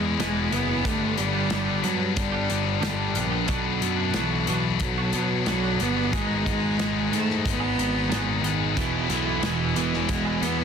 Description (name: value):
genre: quiet-loud alternative rock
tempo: 91 BPM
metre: 4/4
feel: straight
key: E major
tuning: A4 = 440 Hz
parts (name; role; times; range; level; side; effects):
- bright cello; melody; 0.0-10.6 s; E3 to B3; -27 LUFS; equal; digital delay
- twelve-string electric guitar; arpeggios; 0.0-10.6 s; E2 to G#4; -32 LUFS; right 11 dB; wide subtle chorus, digital delay
- scooped high-gain guitar; riff; 0.0-10.6 s; G2 to E4; -27 LUFS; left 13 dB; distortion
- fuzz picked electric bass; bass; 0.0-10.6 s; E1 to B2; -29 LUFS; equal; overdrive
- loose indie drum kit; drums; 0.2-10.6 s; hi-hat, kick drum, snare drum; -31 LUFS; equal; none
- crunchy overdriven guitar; riff; 8.8-10.6 s; E2 to E3; -29 LUFS; right 13 dB; none
room: light reverb, small room ambience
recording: dense, heavily limited modern master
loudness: -22 LUFS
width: side -7 dB against mid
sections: 0.0-10.6 A section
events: none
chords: 0.0 E; 0.8 G; 3.5 Bm; 6.1 G#m; 8.8 E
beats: 0.18 | 0.84 1.50 2.16 2.82 | 3.48 4.14 4.81 5.47 | 6.13 6.79 7.45 8.11 | 8.77 9.43 10.09